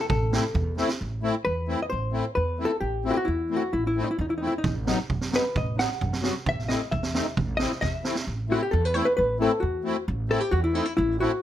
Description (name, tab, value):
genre	klezmer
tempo	132 BPM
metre	2/4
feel	straight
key	A dorian sharp4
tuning	A4 = 442 Hz
part	hollow-body jazz guitar	melody	0.0-11.4 s	D#4 to F#5	-27 LUFS	left 1 dB	plate reverb
part	upright bass	bass	0.1-11.2 s	A1 to F#2	-29 LUFS	right 1 dB	none
part	street-band drum kit	drums	0.1-1.0, 4.6-8.3 s	kick drum, snare drum	-28 LUFS	right 3 dB	none
part	musette accordion	accompaniment	0.3-11.3 s	F#3 to F#4	-27 LUFS	left 3 dB	none
room	light reverb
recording	close, detailed microphones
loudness	-23 LUFS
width	side -11 dB against mid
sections	0.0-1.0 A section; 1.0-8.3 B section; 8.3-11.4 C section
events	drum fill 0.8, 7.8-8.3; hollow-body jazz guitar solo 1.0-8.3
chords	0.0 Am; 4.7 B/A; 6.5 Am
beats	| 0.10 0.55 | 1.01 1.47 | 1.92 2.38 | 2.83 3.29 | 3.74 4.20 | 4.65 5.11 | 5.56 6.02 | 6.47 6.92 | 7.38 7.83 | 8.28 8.73 | 9.18 9.63 | 10.08 10.53 | 10.98